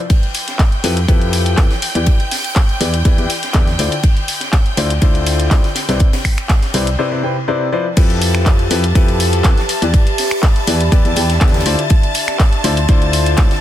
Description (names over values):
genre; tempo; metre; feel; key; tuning
piano house; 122 BPM; 4/4; straight; C major; A4 = 441 Hz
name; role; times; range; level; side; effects
rich symphonic string section; sustained chords; 0.1-13.6 s; G5 to A6; -25 LUFS; right 1 dB; sidechain pumping
crisp fusion drum kit; drums; 0.1-13.6 s; hi-hat, ride cymbal, snare drum; -26 LUFS; left 1 dB; sidechain pumping on cymbals, high-pass filter on cymbals, studio ambience, sidechain pumping on hats, high-pass filter on hats, high-pass filter on snare, high-pass filter on room
electronic kick drum; drums; 0.1-13.5 s; none; -12 LUFS; equal; studio ambience
house drum kit; drums; 0.1-13.6 s; crash cymbal, finger snaps, handclaps, hi-hat; -21 LUFS; left 1 dB; studio ambience, soft clipping on snare
warm grand piano; riff; 0.8-13.5 s; C3 to G5; -20 LUFS; left 3 dB; sidechain pumping, digital delay
solid FM bass; bass; 0.8-13.5 s; C2 to F2; -17 LUFS; equal; sidechain pumping
warbly tape-like pad; texture; 8.0-13.6 s; D4 to C6; -24 LUFS; equal; chorus, built-in reverb, sidechain pumping
room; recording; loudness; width
small room ambience; dense, heavily limited modern master; -12 LUFS; side -12 dB against mid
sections
0.0-8.0 A section; 8.0-13.6 B section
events
break 7.0-8.0; drop 8.0-13.6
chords
0.1 Fmaj9#11; 1.8 Em7; 3.8 Cmaj9; 8.0 Fmaj9#11; 9.7 Em7; 11.7 Cadd9